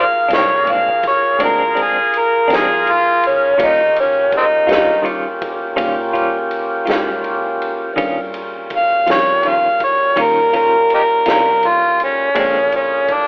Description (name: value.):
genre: slow blues.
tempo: 55 BPM (dotted quarters).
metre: 12/8.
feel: straight.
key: unclear.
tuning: A4 = 437 Hz.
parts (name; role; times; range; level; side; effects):
overdriven harmonica; melody; 0.0-13.3 s; Ab3 to F5; -16 LUFS; equal; none.
tonewheel organ; sustained chords; 0.0-13.3 s; D3 to F5; -24 LUFS; equal; overdrive, slow rotary speaker.
fingered electric bass; bass; 0.0-13.3 s; Bb1 to Bb2; -33 LUFS; equal; none.
clean electric guitar; accompaniment; 0.3-12.6 s; Bb2 to F4; -23 LUFS; equal; tremolo.
raw garage drum kit; drums; 0.3-13.3 s; kick drum, ride cymbal, snare drum; -27 LUFS; equal; none.
room: moderate studio reverb, RT60 0.5 s.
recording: rough home demo mix, telephone sound.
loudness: -15 LUFS.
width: mono.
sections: 0.0-13.3 A section.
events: harmonica solo 0.0-13.3.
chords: 0.0 Bb9; 3.6 Eb9; 12.4 Bb9.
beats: 0.30 1.40 2.50 | 3.59 4.69 5.79 6.88 | 7.98 9.08 10.17 11.26 | 12.36.